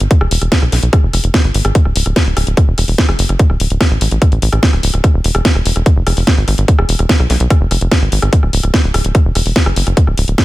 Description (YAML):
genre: psychedelic trance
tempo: 146 BPM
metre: 4/4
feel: straight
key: unclear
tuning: A4 = 440 Hz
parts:
  - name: tight sequencer bass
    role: bass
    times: 0.0-10.3 s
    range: D1 to B1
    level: -14 LUFS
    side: equal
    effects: tube saturation
  - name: garage drum kit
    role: drums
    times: 0.0-10.4 s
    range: hi-hat, rim click, snare drum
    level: -17 LUFS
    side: equal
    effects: small room ambience
  - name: electronic kick drum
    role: drums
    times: 0.1-10.4 s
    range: none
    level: -11 LUFS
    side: equal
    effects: small room ambience
room: little or no reverb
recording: none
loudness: -10 LUFS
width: side -17 dB against mid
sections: 0.0-10.4 A section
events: none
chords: none